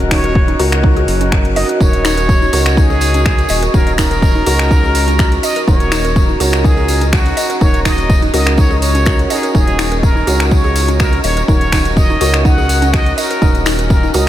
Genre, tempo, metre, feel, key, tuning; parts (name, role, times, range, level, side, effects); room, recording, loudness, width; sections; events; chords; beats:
afro house; 124 BPM; 4/4; straight; Eb minor; A4 = 440 Hz
dark analog pad; sustained chords; 0.0-14.3 s; Gb4 to Gb6; -23 LUFS; right 1 dB; chorus, sidechain pumping
felt-muted upright piano; stabs; 0.0-14.3 s; Db4 to Bb4; -22 LUFS; right 2 dB; sidechain pumping, ping-pong delay
round analog bass; bass; 0.0-14.3 s; Eb1 to Db2; -16 LUFS; equal; sidechain pumping
deep house drum kit; drums; 0.0-14.2 s; finger snaps, hi-hat; -22 LUFS; left 1 dB; overdrive
trumpet with plunger mute; melody; 0.1-14.3 s; Gb4 to Gb5; -19 LUFS; equal; ping-pong delay
mallet-like synth pluck; arpeggios; 0.1-14.2 s; Db4 to Eb5; -21 LUFS; equal; chorus, sidechain pumping, ping-pong delay
electronic kick drum; drums; 0.1-14.0 s; -13 LUFS; equal; overdrive
tambourine; percussion; 1.8-14.2 s; -26 LUFS; right 3 dB
moderate huge ambient reverb, RT60 8.1 s; dreamy mix soaked in reverb; -10 LUFS; side -12 dB against mid
0.0-14.3 A section
0.0 Ebm7
0.35 0.84 1.32 | 1.80 2.29 2.77 3.26 | 3.74 4.22 4.71 5.19 | 5.68 6.16 6.64 7.13 | 7.61 8.10 8.58 9.06 | 9.55 10.03 10.52 11.00 | 11.48 11.97 12.45 12.93 | 13.42 13.90